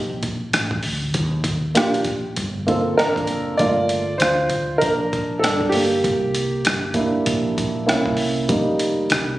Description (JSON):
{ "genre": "hip hop, jazz-hop", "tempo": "98 BPM", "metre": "4/4", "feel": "swing 60% on 16ths", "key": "G minor", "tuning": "A4 = 438 Hz", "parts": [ { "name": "woody fretless electric bass", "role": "bass", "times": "0.0-9.4 s", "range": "F1 to Eb2", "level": "-27 LUFS", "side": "equal", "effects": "none" }, { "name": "boom bap sampler-style drum kit", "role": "drums", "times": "0.2-9.3 s", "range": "hi-hat, kick drum, rim click", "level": "-23 LUFS", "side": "equal", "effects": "vintage 12-bit sampler grit" }, { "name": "dark grand piano", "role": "accompaniment", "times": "1.7-9.4 s", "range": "G3 to D5", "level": "-19 LUFS", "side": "right 1 dB", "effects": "none" } ], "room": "moderate echo chamber reverb, RT60 1.3 s", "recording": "recorded on a phone in the room, studio reverb, compression", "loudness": "-18 LUFS", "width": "side -16 dB against mid", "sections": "0.0-3.6 A section; 3.6-9.4 A section", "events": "grand piano solo 3.6-9.4", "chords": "0.0 N.C.; 1.2 Ebmaj9; 2.4 Gm11; 3.6 Gm7; 6.0 C7; 7.9 C7b9; 8.5 F7sus4" }